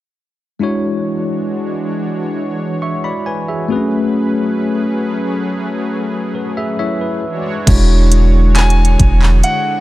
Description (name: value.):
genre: contemporary R&B.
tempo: 68 BPM.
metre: 4/4.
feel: straight.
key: unclear.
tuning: A4 = 440 Hz.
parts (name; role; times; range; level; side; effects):
tine electric piano; accompaniment; 0.6-9.8 s; G#3 to C#6; -18 LUFS; left 2 dB; medium stereo tremolo.
warm analog pad; sustained chords; 0.6-9.8 s; D3 to C#5; -22 LUFS; right 1 dB; chorus, tremolo.
long sustained 808-style bass; bass; 7.7-9.4 s; E1; -10 LUFS; equal; none.
smooth R&B drum kit; drums; 7.7-9.6 s; crash cymbal, handclaps, hi-hat, kick drum; -16 LUFS; equal; overdrive.
clear concert grand piano; melody; 8.6-9.8 s; F#5 to G#5; -18 LUFS; left 1 dB; none.
room: little or no reverb.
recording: none.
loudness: -13 LUFS.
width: side -17 dB against mid.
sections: 0.6-7.7 A section; 7.7-9.8 B section.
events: tine electric piano fill 6.3-7.7.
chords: 0.6 E13; 3.7 Amaj13; 7.2 E13.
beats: | 0.61 1.50 2.38 3.26 | 4.14 5.03 5.91 6.79 | 7.67 8.55 9.44.